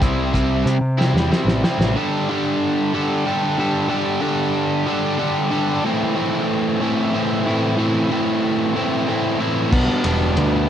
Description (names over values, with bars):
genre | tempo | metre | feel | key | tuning
indie rock | 62 BPM (dotted quarters) | 6/8 | straight | unclear | A4 = 441 Hz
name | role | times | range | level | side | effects
crunchy overdriven guitar | riff | 0.0-10.7 s | A2 to A4 | -18 LUFS | equal | cassette tape
growling picked electric bass | bass | 0.0-1.9, 9.7-10.7 s | E1 to C3 | -20 LUFS | equal | overdrive
cloth-damped thuddy drum kit | drums | 0.0-2.0, 9.7-10.5 s | crash cymbal, hi-hat, kick drum, ride cymbal, snare drum | -21 LUFS | equal | cassette tape
room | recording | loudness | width
little or no reverb | home recording on cassette | -17 LUFS | side -9 dB against mid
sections
0.0-2.0 A section; 2.0-10.7 B section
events
drum fill 1.0-2.0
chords
0.0 C; 2.0 Dsus4; 5.8 Am; 9.7 G6